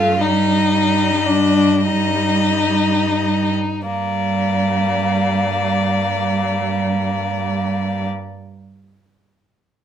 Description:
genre	classical, slow romantic movement for string quartet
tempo	26-42 BPM (dotted quarters)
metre	6/8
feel	rubato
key	G minor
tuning	A4 = 437 Hz
part	clear violin	melody	0.0-8.1 s	D5 to F5	-24 LUFS	left 7 dB	none
part	rich violin	second line	0.0-8.1 s	Bb3 to F4	-19 LUFS	left 4 dB	none
part	rich viola	accompaniment	0.0-8.1 s	G3 to A3	-24 LUFS	right 3 dB	none
part	warm cello	bass	0.0-8.1 s	G2	-21 LUFS	right 5 dB	none
room	moderate studio reverb, RT60 0.8 s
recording	minimal, uncompressed stereo recording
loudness	-16 LUFS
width	side -9 dB against mid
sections	0.0-3.9 A section; 3.9-7.6 B section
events	slowing down 0.0-3.9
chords	0.2 Eb/G

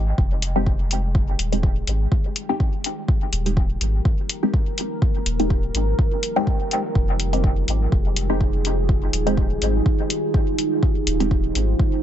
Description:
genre	dub techno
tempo	124 BPM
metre	4/4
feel	swing 55% on 16ths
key	F minor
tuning	A4 = 440 Hz
part	deep dark ambient pad	sustained chords	0.2-12.0 s	Eb4 to C5	-27 LUFS	right 2 dB	chorus, built-in reverb, sidechain pumping
part	pure sine sub bass	bass	0.0-11.7 s	Eb1 to Ab1	-23 LUFS	equal	sidechain pumping
part	electronic kick drum	drums	0.2-11.9 s	none	-20 LUFS	equal	overdrive
part	electronic hi-hat	drums	0.4-11.7 s	none	-26 LUFS	left 3 dB	overdrive
part	filtered dub chord stab	stabs	0.6-11.4 s	Ab3 to G4	-26 LUFS	left 1 dB	phaser, sidechain pumping, dub echo
room	little or no reverb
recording	nothing above 7.9 kHz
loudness	-19 LUFS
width	side -11 dB against mid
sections	0.0-12.0 A section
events	none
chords	0.0 Fm9

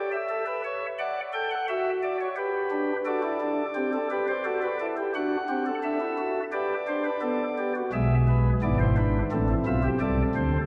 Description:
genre	classical, baroque-style 4-part fugue for pipe organ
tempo	87 BPM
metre	4/4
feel	straight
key	G major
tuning	A4 = 444 Hz
part	pipe organ, flutes	solo	0.0-10.6 s	G#1 to G5	-27 LUFS	equal	none
room	wet church reverb, RT60 2.8 s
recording	lossy compression artefacts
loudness	-27 LUFS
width	mono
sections	0.0-7.9 A section; 7.9-10.7 B section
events	none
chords	0.0 A7; 1.0 D; 2.4 G; 3.8 C; 5.2 D7; 6.5 G; 7.9 E7/B; 9.3 Am

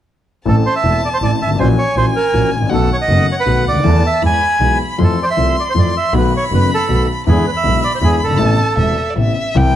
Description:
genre	tango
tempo	158 BPM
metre	3/4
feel	rubato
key	A harmonic minor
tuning	A4 = 440 Hz
part	bandoneon	melody	0.5-9.1 s	G#4 to G#5	-17 LUFS	right 3 dB	plate reverb
part	warm violin	second line	0.5-9.8 s	D5 to C6	-22 LUFS	left 2 dB	none
part	warm concert grand piano	accompaniment	0.5-9.7 s	E1 to A4	-18 LUFS	left 4 dB	none
part	clear double bass	bass	0.5-9.7 s	E1 to F2	-16 LUFS	right 1 dB	none
room	moderate large studio reverb, RT60 0.9 s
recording	dark, warm production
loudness	-12 LUFS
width	side -11 dB against mid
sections	0.5-9.5 A section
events	none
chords	0.5 Am; 1.6 F#7/A#; 2.7 B7; 3.8 Esus4; 4.2 E; 5.0 Fmaj7; 6.1 B7; 7.3 E7; 8.4 Amadd9

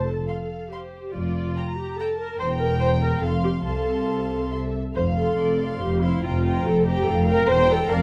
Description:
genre	quick classical-period movement for string orchestra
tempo	142 BPM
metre	3/4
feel	rubato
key	F major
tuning	A4 = 438 Hz
part	warm studio violin section	melody	0.0-8.0 s	C5 to Bb5	-38 LUFS	equal	none
part	warm studio viola section	accompaniment	0.0-8.0 s	E4 to C5	-27 LUFS	equal	none
part	dark studio double bass section	bass	0.0-8.0 s	E1 to C2	-29 LUFS	equal	none
part	warm studio cello section	bass	0.0-8.0 s	E2 to C3	-29 LUFS	equal	none
part	warm studio violin section	second line	0.3-8.0 s	E5 to C6	-34 LUFS	equal	none
room	light reverb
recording	none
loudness	-23 LUFS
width	mono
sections	0.0-8.0 A section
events	none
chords	0.0 F; 1.1 Gm7/F; 2.4 Edim; 3.2 F5; 3.7 F/C; 5.0 F; 6.2 Gm7/F; 7.5 C7/E

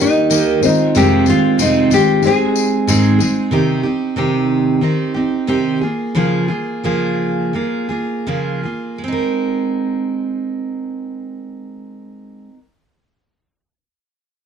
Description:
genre	acoustic pop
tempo	79-94 BPM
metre	4/4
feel	swing 55% on 16ths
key	Ab major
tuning	A4 = 440 Hz
part	nylon-string guitar	melody	0.0-3.2 s	Eb4 to Ab4	-16 LUFS	left 2 dB	plate reverb
part	felt-muted upright piano	accompaniment	0.0-3.5 s	Ab3 to C5	-25 LUFS	left 8 dB	none
part	picked steel-string acoustic guitar	accompaniment	0.0-12.6 s	F2 to Bb4	-16 LUFS	right 2 dB	none
part	tambourine	percussion	0.3-3.4 s	none	-24 LUFS	left 11 dB	none
room	moderate studio ambience, RT60 0.5 s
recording	dark, warm production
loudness	-14 LUFS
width	side -7 dB against mid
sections	0.0-3.5 A section; 3.5-9.0 B section; 9.0-12.1 C section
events	slowing down 3.5-9.0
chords	0.0 Eb; 0.6 Fm7; 2.2 Ab; 3.5 Cm; 5.8 Bbm7/Db; 9.0 Abadd9

